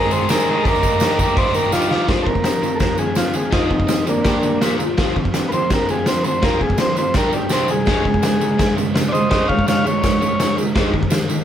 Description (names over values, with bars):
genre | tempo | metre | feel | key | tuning
garage rock duo or trio | 166 BPM | 4/4 | straight | F minor | A4 = 440 Hz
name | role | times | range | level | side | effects
overdriven combo organ | melody | 0.0-10.6 s | Bb3 to F5 | -20 LUFS | equal | none
biting overdriven guitar | riff | 0.0-11.4 s | Ab2 to Bb4 | -21 LUFS | equal | none
tambourine | percussion | 0.1-11.4 s | none | -34 LUFS | right 5 dB | none
raw garage drum kit | drums | 0.3-11.2 s | crash cymbal, hi-hat, kick drum, snare drum | -19 LUFS | equal | none
room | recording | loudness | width
light reverb | band playing live in one room | -15 LUFS | side -10 dB against mid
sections
0.0-2.1 A section; 2.1-11.4 B section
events
drum fill 1.7-2.1; transistor combo organ solo 2.1-11.4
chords
0.0 Ab; 0.6 Eb; 2.1 F5; 4.3 G5; 4.6 Bb5; 5.0 F5; 7.2 G5; 7.5 C5; 7.9 Db5; 10.8 Ab5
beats
0.29 | 0.65 1.01 1.37 1.73 | 2.09 2.45 2.81 3.17 | 3.53 3.90 4.26 4.62 | 4.98 5.34 5.70 6.07 | 6.43 6.79 7.15 7.51 | 7.87 8.23 8.59 8.96 | 9.31 9.68 10.04 10.39 | 10.76 11.11